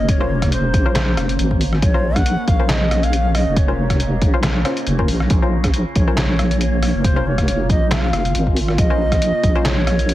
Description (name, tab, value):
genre	deep dubstep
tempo	138 BPM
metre	4/4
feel	swing 55% on 16ths, half-time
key	Bb minor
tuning	A4 = 440 Hz
part	breathy bright low ney	melody	0.0-10.1 s	C5 to Gb5	-24 LUFS	equal	dub echo
part	overtone-sweeping drone	sustained chords	0.0-10.1 s	Db3 to F4	-26 LUFS	equal	chorus, built-in reverb
part	deep soft wobble bass	bass	0.0-10.1 s	F1 to Bb1	-18 LUFS	equal	chorus, tube saturation
part	electronic kick drum	drums	0.1-9.5 s	none	-18 LUFS	equal	small room ambience
part	trip hop sampler-style drum kit	drums	0.1-10.1 s	handclaps, hi-hat, rim click, snare drum	-23 LUFS	equal	small room ambience
part	filtered dub chord stab	stabs	0.2-9.6 s	Db4 to C5	-26 LUFS	left 4 dB	chorus, dub echo
room	light reverb, digital ambience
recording	heavily compressed radio sound, multiband compression, vinyl crackle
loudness	-15 LUFS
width	side -14 dB against mid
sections	0.0-10.1 A section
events	none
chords	0.0 Bbmadd9